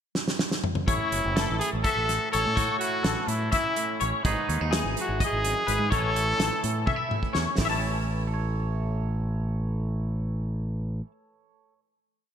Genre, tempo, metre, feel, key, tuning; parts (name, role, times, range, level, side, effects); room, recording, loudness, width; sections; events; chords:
math rock and midwest emo; 252 BPM (eighths); 7/8; straight; A lydian; A4 = 440 Hz
loose indie drum kit; drums; 0.1-7.7 s; hi-hat, kick drum, snare drum, toms; -28 LUFS; right 1 dB
bright trumpet; melody; 0.9-7.1 s; D#4 to A4; -28 LUFS; left 1 dB; ping-pong delay
twangy electric guitar; accompaniment; 0.9-11.8 s; F#2 to C#5; -34 LUFS; right 8 dB; wide subtle chorus
twangy electric guitar; arpeggios; 0.9-11.1 s; G#4 to A5; -31 LUFS; left 8 dB; analog chorus
growling fingered electric bass; bass; 0.9-11.0 s; F#1 to A2; -29 LUFS; equal; overdrive
light reverb; bright 1980s-style digital production; -24 LUFS; side -8 dB against mid
0.0-0.9 pickup bar; 0.9-7.6 A section; 7.6-10.9 final chord
drum fill 0.2-0.9, 6.9-7.6
0.0 N.C.; 0.9 A6; 4.2 Emaj7/G#; 5.9 A